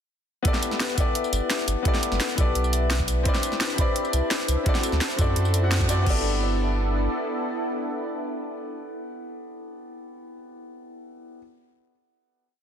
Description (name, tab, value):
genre	liquid drum and bass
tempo	171 BPM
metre	4/4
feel	straight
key	G major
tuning	A4 = 442 Hz
part	clear concert grand piano	accompaniment	0.4-11.4 s	B3 to B5	-30 LUFS	left 2 dB	ping-pong delay
part	vibraphone with soft mallets	arpeggios	0.5-6.2 s	E4 to E5	-33 LUFS	left 5 dB	ping-pong delay
part	drum and bass drum kit	drums	0.5-6.1 s	crash cymbal, hi-hat, snare drum, tambourine	-28 LUFS	equal	overdrive
part	electronic kick drum	drums	0.5-6.1 s	none	-24 LUFS	equal	none
part	warm sub bass	bass	1.3-7.1 s	G1 to F#2	-24 LUFS	equal	tube saturation
part	warm analog pad	sustained chords	3.3-9.6 s	B3 to B5	-31 LUFS	right 2 dB	chorus, sidechain pumping
room	light reverb, digital ambience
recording	dense, heavily limited modern master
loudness	-22 LUFS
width	side -8 dB against mid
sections	0.5-6.1 drop; 6.1-8.9 final chord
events	drop 0.5-6.1; band accent 5.7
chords	0.5 G6; 3.3 Cmaj7; 4.7 D9; 6.1 G6